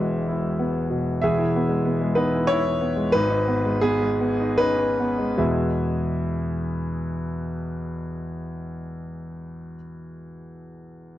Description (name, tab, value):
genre	neoclassical minimalist piano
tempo	72-96 BPM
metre	3/4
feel	rubato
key	E major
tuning	A4 = 440 Hz
part	warm concert grand piano	solo	0.0-11.2 s	E1 to E5	-22 LUFS	equal	none
room	moderate spring reverb, RT60 1.5 s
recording	cassette tape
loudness	-21 LUFS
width	side -13 dB against mid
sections	0.0-1.2 A section; 1.2-5.4 B section; 5.4-10.2 C section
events	slowing down 0.3-5.4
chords	0.0 E; 3.1 G#m; 5.4 E